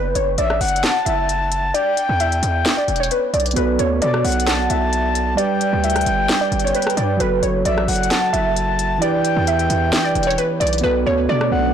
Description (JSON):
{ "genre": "hip hop, trap", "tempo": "132 BPM", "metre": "4/4", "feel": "half-time", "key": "B minor", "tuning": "A4 = 440 Hz", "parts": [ { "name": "glassy wavetable pluck", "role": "melody", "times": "0.0-11.7 s", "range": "B4 to F#5", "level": "-21 LUFS", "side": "right 1 dB", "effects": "chorus, low-pass filter, digital delay" }, { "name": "distorted 808-style bass", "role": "bass", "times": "0.0-11.7 s", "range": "E1 to B2", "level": "-22 LUFS", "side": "equal", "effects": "distortion" }, { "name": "trap drum kit", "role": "drums", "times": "0.2-11.5 s", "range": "hi-hat, rim click, snare drum", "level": "-23 LUFS", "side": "equal", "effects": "none" }, { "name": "breathy flute-like synth lead", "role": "second line", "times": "0.4-11.7 s", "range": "D5 to A5", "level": "-22 LUFS", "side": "left 3 dB", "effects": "chorus, digital delay" }, { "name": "tine electric piano", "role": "accompaniment", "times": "3.5-11.7 s", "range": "E3 to D5", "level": "-23 LUFS", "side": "right 5 dB", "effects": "low-pass filter" }, { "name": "deep dark ambient pad", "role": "sustained chords", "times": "11.2-11.7 s", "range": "A3 to D4", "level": "-24 LUFS", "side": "right 3 dB", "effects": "chorus, built-in reverb" } ], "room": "little or no reverb", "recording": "blown-out, overdriven recording, overdrive", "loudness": "-16 LUFS", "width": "side -8 dB against mid", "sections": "0.0-11.7 A section", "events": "break 0.0-3.6; filter sweep 0.0-10.8; hi-hats muted 10.8-11.7", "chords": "0.0 F#m; 1.7 Em; 3.6 Bm7; 5.4 G; 7.2 F#m; 9.0 Em; 10.8 Bm7" }